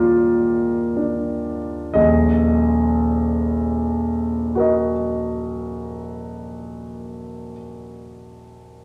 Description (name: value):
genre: classical, romantic nocturne for solo piano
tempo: 18-24 BPM (dotted quarters)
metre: 6/8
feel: rubato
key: Eb minor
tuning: A4 = 442 Hz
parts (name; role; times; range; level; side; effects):
- clear concert grand piano; solo; 0.0-8.8 s; Eb1 to Eb5; -21 LUFS; equal; none
room: wet recital hall reverb, RT60 1.4 s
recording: none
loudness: -20 LUFS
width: mono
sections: 0.0-1.9 A section; 1.9-7.2 B section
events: slowing down 0.0-1.9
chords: 0.0 Bb7/Eb; 1.9 Ebm